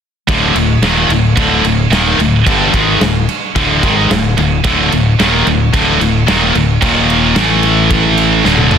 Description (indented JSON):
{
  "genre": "heavy metal",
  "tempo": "110 BPM",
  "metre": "4/4",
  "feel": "straight",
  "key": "unclear",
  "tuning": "A4 = 440 Hz",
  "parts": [
    { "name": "high-gain distorted guitar", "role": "riff", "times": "0.3-8.8 s", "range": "D2 to A3", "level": "-15 LUFS", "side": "left 10 dB", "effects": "distortion" },
    { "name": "high-gain distorted guitar", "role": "riff", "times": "0.3-8.8 s", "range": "D2 to A3", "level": "-13 LUFS", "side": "right 7 dB", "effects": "distortion" },
    { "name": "growling fingered electric bass", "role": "bass", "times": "0.3-8.8 s", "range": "D1 to A1", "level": "-17 LUFS", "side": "equal", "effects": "overdrive" },
    { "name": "big rock drum kit", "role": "drums", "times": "0.3-8.8 s", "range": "crash cymbal, kick drum, snare drum, toms", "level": "-17 LUFS", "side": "right 1 dB", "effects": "none" }
  ],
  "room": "little or no reverb",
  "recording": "dense, heavily limited modern master",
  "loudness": "-9 LUFS",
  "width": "side -7 dB against mid",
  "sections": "0.3-8.8 A section",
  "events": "drum fill 8.4-8.8",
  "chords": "0.3 D5; 6.8 Eb5; 7.4 A5"
}